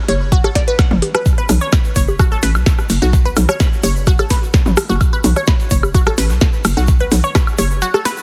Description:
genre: minimal techno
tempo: 128 BPM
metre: 4/4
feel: straight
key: unclear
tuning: A4 = 439 Hz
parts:
  - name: resonant blip pluck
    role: riff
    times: 0.1-8.1 s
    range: F#4 to B5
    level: -24 LUFS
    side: equal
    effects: phaser, sidechain pumping, tape echo
  - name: hollow knocking FM bass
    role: bass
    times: 0.1-7.8 s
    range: F#1 to B1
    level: -19 LUFS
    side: equal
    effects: sidechain pumping
  - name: dusty soul sampler-style drum kit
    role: drums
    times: 0.1-8.2 s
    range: hi-hat, snare drum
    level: -33 LUFS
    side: equal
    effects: high-pass filter on snare, sidechain pumping on hats, high-pass filter on hats, high-pass filter on room
  - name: minimal click drum kit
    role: drums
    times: 0.1-8.2 s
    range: hi-hat, snare drum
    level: -23 LUFS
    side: equal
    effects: none
  - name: garage drum kit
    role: percussion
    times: 0.1-8.0 s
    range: bongos, rim click, toms, woodblock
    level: -22 LUFS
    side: equal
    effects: delay
  - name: electronic kick drum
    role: drums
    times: 0.3-7.4 s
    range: none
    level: -16 LUFS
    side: equal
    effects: none
  - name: tube shaker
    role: percussion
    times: 1.3-8.2 s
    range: none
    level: -34 LUFS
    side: equal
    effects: none
room: digital ambience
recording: heavily compressed radio sound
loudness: -14 LUFS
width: mono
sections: 0.0-8.2 A section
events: none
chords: 0.0 B5

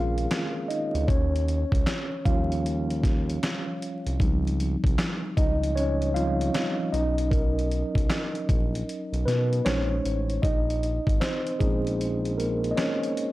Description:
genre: lo-fi hip hop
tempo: 77 BPM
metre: 4/4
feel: swing 63% on 16ths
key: Bb dorian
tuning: A4 = 438 Hz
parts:
  - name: mellow tine electric piano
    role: accompaniment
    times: 0.0-13.3 s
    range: Eb3 to F5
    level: -28 LUFS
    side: equal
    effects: medium stereo tremolo, cassette tape, low-pass filter
  - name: smooth synth bass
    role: bass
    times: 0.0-12.7 s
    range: Ab1 to B2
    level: -27 LUFS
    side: equal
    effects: none
  - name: dusty soul sampler-style drum kit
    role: drums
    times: 0.2-13.3 s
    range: handclaps, hi-hat, kick drum, snare drum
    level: -26 LUFS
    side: equal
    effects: none
room: little or no reverb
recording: dry, gritty hardware recording, vinyl crackle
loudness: -23 LUFS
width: side -17 dB against mid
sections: 0.0-10.4 A section; 10.4-13.3 B section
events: tine electric piano solo 0.0-10.4, 10.4-13.3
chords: 0.0 Bbm11; 1.1 Dbmaj9#11; 6.9 Bmaj9; 9.7 Bbm11

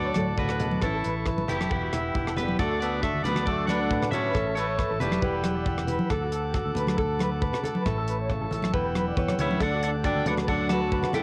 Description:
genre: highlife guitar band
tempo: 137 BPM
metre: 4/4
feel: swing 53% on 16ths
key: D major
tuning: A4 = 440 Hz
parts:
  - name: electric guitar at the edge of break-up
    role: melody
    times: 0.0-5.9, 9.4-11.2 s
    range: E4 to A5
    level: -33 LUFS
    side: equal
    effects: cassette tape
  - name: nylon-string guitar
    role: accompaniment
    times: 0.0-11.2 s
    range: A2 to B4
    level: -34 LUFS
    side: equal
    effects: none
  - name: overdriven combo organ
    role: sustained chords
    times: 0.0-11.2 s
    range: E5 to E6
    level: -39 LUFS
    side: equal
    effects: none
  - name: electric guitar through a small old amp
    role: arpeggios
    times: 0.0-11.2 s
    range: E4 to D5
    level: -36 LUFS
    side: equal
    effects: tremolo
  - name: fingered electric bass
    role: bass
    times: 0.0-11.0 s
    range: E1 to E2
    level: -34 LUFS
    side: equal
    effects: none
  - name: tight funk drum kit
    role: drums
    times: 0.1-11.2 s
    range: hi-hat, kick drum, rim click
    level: -34 LUFS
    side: equal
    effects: cassette tape
  - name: congas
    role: percussion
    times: 0.2-11.2 s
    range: none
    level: -33 LUFS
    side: equal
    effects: none
  - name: breathy alto saxophone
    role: second line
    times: 2.4-5.8, 9.4-11.2 s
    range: G3 to F#4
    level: -34 LUFS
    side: equal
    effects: none
room: small room ambience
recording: home recording on cassette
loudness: -27 LUFS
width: mono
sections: 0.0-2.6 A section; 2.6-11.2 B section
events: none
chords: 0.0 D; 0.8 A; 1.7 Emadd9; 2.6 D; 4.3 A; 5.2 Emadd9; 6.1 D; 7.9 A; 8.7 Emadd9; 9.6 D

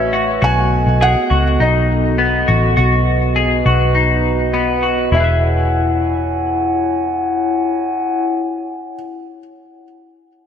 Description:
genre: dream pop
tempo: 102 BPM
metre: 4/4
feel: straight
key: E major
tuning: A4 = 441 Hz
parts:
  - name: felt-muted upright piano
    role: melody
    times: 0.0-8.9 s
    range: D#5 to G#5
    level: -20 LUFS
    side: right 1 dB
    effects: ping-pong delay
  - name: glass harmonica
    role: sustained chords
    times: 0.0-8.2 s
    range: A3 to G#5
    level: -19 LUFS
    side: left 1 dB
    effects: none
  - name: semi-hollow electric guitar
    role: arpeggios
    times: 0.0-9.0 s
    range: B3 to E5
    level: -18 LUFS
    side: left 4 dB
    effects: analog chorus, ping-pong delay
  - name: vintage muted picked electric bass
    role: bass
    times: 0.0-8.9 s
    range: E1 to C#2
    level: -17 LUFS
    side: equal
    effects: none
room: moderate lush hall reverb, RT60 3.0 s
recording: lossy compression artefacts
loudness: -13 LUFS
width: side -8 dB against mid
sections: 0.0-5.1 A section; 5.1-7.5 B section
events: none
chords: 0.4 B7; 5.1 E69

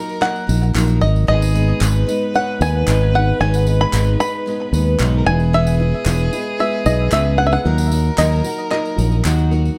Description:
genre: indie folk with a building arrangement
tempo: 113 BPM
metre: 4/4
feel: straight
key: G# minor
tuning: A4 = 441 Hz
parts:
  - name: bluegrass banjo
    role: melody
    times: 0.0-9.5 s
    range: D#5 to B5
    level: -23 LUFS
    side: equal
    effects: digital delay
  - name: dark fiddle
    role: second line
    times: 0.0-9.8 s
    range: F#4 to B4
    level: -28 LUFS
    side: equal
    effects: none
  - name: dark upright piano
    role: accompaniment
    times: 0.0-9.8 s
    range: G#1 to F#5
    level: -29 LUFS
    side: equal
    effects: none
  - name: picked steel-string acoustic guitar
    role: accompaniment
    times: 0.0-9.8 s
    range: G#2 to B4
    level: -28 LUFS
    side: equal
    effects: none
  - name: tambourine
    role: percussion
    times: 0.1-9.7 s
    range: none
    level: -37 LUFS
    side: equal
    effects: none
  - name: group handclap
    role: percussion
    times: 0.2-9.4 s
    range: none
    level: -29 LUFS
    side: equal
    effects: none
  - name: fingered electric bass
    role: bass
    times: 0.5-9.7 s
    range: E1 to D#2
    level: -18 LUFS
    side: equal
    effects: none
room: light reverb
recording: dark, warm production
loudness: -17 LUFS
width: mono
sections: 0.0-9.8 A section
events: none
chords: 0.0 D#m; 1.3 G#m; 5.3 E; 7.7 D#m

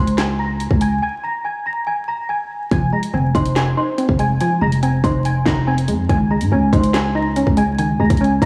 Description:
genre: hip hop, drill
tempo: 142 BPM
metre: 4/4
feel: half-time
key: unclear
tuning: A4 = 440 Hz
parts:
  - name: small celesta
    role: melody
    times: 0.0-8.5 s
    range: C5 to Bb6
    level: -25 LUFS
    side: equal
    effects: analog chorus, analog delay
  - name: growling 808-style bass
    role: bass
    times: 0.0-8.5 s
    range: F1 to Ab2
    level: -20 LUFS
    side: equal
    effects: none
  - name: drill drum kit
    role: drums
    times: 0.1-8.5 s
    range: handclaps, hi-hat, kick drum, snare drum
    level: -23 LUFS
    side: equal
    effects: none
  - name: hollow square pluck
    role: accompaniment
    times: 2.7-8.5 s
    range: Eb3 to Eb4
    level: -23 LUFS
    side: equal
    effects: chorus
room: moderate plate reverb, RT60 2.1 s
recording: dreamy mix soaked in reverb, vinyl crackle, studio ambience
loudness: -18 LUFS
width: mono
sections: 0.0-8.5 A section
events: break 1.0-2.7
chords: 0.0 Db5; 2.7 Fm7; 6.1 Dbsus2

